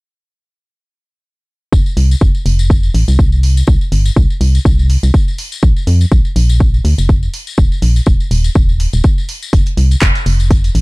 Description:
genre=piano house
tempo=123 BPM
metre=4/4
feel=swing 56% on 16ths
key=F major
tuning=A4 = 440 Hz
part: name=organ-like FM bass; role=bass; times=1.7-10.8 s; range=Eb1 to F2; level=-11 LUFS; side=equal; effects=sidechain pumping
part: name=electronic kick drum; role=drums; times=1.7-10.6 s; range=none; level=-11 LUFS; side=equal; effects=none
part: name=tambourine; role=percussion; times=1.7-10.7 s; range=none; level=-29 LUFS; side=left 6 dB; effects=none
part: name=punchy analog drum machine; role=drums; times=2.0-10.8 s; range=handclaps, hi-hat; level=-23 LUFS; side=equal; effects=overdrive
room=digital ambience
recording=dark, warm production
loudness=-10 LUFS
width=side -26 dB against mid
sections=1.7-10.8 A section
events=none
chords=none

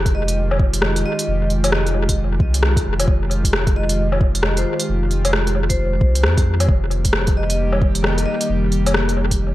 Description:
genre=future garage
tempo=133 BPM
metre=4/4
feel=swing 62% on 16ths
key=F minor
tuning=A4 = 440 Hz
part: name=airy breathy pad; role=sustained chords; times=0.0-9.5 s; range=Eb3 to G4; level=-24 LUFS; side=right 1 dB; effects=chorus, vintage 12-bit sampler grit, sidechain pumping
part: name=warm sub bass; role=bass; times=0.0-9.5 s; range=F1 to F2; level=-20 LUFS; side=equal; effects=sidechain pumping
part: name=vibraphone with medium mallets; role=melody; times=0.1-8.5 s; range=C5 to Eb5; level=-28 LUFS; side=left 1 dB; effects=tape echo
part: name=electronic kick drum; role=drums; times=0.1-9.4 s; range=none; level=-18 LUFS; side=equal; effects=overdrive
part: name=garage drum kit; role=drums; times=0.1-9.4 s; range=hi-hat, rim click, woodblock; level=-22 LUFS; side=left 1 dB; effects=tape echo
room=little or no reverb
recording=echo-heavy mix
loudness=-16 LUFS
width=side -15 dB against mid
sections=0.0-9.5 A section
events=none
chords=0.0 Fm9; 6.7 Eb/F

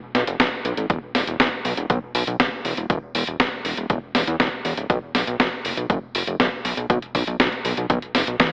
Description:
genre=italo disco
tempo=120 BPM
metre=4/4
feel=straight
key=unclear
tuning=A4 = 436 Hz
part: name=fat analog bass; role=bass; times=0.1-8.5 s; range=D1 to E2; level=-29 LUFS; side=equal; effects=digital delay
part: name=clean 12-bit digital drum machine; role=drums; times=0.1-8.5 s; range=hi-hat, snare drum, toms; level=-24 LUFS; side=equal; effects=gated reverb
part: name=electronic kick drum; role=drums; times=0.4-8.5 s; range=none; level=-26 LUFS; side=equal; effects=none
room=light reverb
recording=AM radio sound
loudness=-23 LUFS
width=mono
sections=0.0-8.5 A section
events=none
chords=none

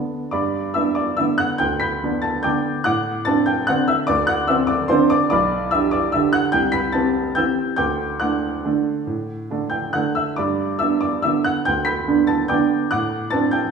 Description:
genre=classical, piano waltz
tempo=132-155 BPM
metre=3/4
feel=rubato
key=G major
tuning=A4 = 440 Hz
part: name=clear upright piano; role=solo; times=0.0-13.7 s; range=B1 to B6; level=-18 LUFS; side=right 1 dB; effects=none
room=wet large studio reverb, RT60 1.3 s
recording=heard from further back in the room, small room ambience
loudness=-18 LUFS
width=side -6 dB against mid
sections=0.3-13.7 A section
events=none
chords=0.3 G; 2.9 D7/A; 5.3 G/B; 6.5 C; 7.8 D; 10.4 G; 12.9 D7/A

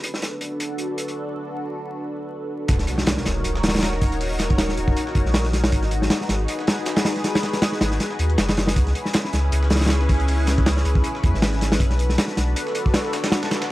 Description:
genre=drum and bass, jungle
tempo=158 BPM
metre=4/4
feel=swing 55% on 16ths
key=Eb phrygian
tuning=A4 = 440 Hz
part: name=lush unison pad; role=sustained chords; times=0.0-13.7 s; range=Db4 to Db5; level=-26 LUFS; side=left 1 dB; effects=chorus, phaser
part: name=crunchy breakbeat drum kit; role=drums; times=0.0-13.6 s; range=hi-hat, kick drum, snare drum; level=-21 LUFS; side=equal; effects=high-pass filter on kick, high-pass filter on hats, high-pass filter on snare, high-pass filter on room
part: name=saturated sub bass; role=bass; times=2.7-12.5 s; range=Eb1 to Fb2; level=-22 LUFS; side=equal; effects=none
part: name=dusty soul sampler-style drum kit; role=drums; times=2.7-13.7 s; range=hi-hat, snare drum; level=-33 LUFS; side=right 1 dB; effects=high-pass filter on hats, high-pass filter on snare, high-pass filter on room
part: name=impact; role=sound effects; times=2.7-4.2 s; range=none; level=-30 LUFS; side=equal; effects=none
room=studio ambience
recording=dry, gritty hardware recording, vinyl crackle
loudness=-19 LUFS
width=side -17 dB against mid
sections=0.0-2.7 A section; 2.7-13.7 B section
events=filter sweep on analog synth pad 0.0-2.7; break 1.2-2.7; drop 2.7-13.7; impact 2.7-4.2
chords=0.0 Bm7; 2.7 Ebm7; 5.7 Abm7; 8.8 Dbm7; 11.8 Bm7

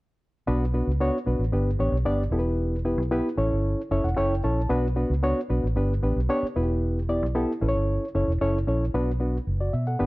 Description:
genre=uptempo 1960s-style soul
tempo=114 BPM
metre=4/4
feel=straight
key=B minor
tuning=A4 = 439 Hz
part: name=reed electric piano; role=accompaniment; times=0.5-10.1 s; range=B3 to A5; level=-26 LUFS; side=equal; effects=none
part: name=vintage muted fingered electric bass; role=bass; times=0.5-10.1 s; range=E1 to B2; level=-25 LUFS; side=equal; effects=none
room=light reverb, digital ambience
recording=none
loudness=-23 LUFS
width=side -20 dB against mid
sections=0.5-8.9 A section; 8.9-10.1 B section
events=reed electric piano fill 3.7-4.7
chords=0.5 Bm; 1.5 G; 2.3 Em; 3.4 A; 4.7 Bm; 5.8 G; 6.6 Em; 7.6 A; 8.9 Bm

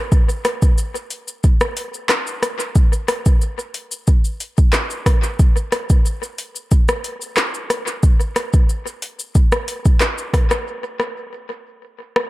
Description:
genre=dancehall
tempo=91 BPM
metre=4/4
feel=straight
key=none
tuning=none
part: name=afro-pop drum kit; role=drums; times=0.1-12.3 s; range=handclaps, hi-hat, kick drum, rim click, shaker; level=-16 LUFS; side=equal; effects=tape echo
room=light reverb, digital ambience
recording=echo-heavy mix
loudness=-16 LUFS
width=side -18 dB against mid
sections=0.0-10.7 A section; 10.7-12.3 B section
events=none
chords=none

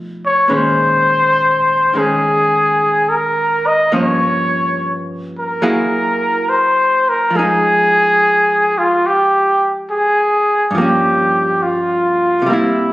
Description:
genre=jazz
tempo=70 BPM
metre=4/4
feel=swing 68% on 8ths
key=unclear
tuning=A4 = 440 Hz
part: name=archtop guitar, miked and amplified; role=accompaniment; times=0.0-12.9 s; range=G2 to Ab4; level=-19 LUFS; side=equal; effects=none
part: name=breathy trumpet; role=melody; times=0.3-12.9 s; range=E4 to Eb5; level=-13 LUFS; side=equal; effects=plate reverb
room=moderate studio reverb, RT60 0.9 s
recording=recorded on a phone in the room, club reverb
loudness=-12 LUFS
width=side -17 dB against mid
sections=0.0-12.9 A section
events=none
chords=0.5 Bbm11; 3.9 Gm7b5; 5.6 Gb9; 7.3 Fm7; 10.7 Gm7b5

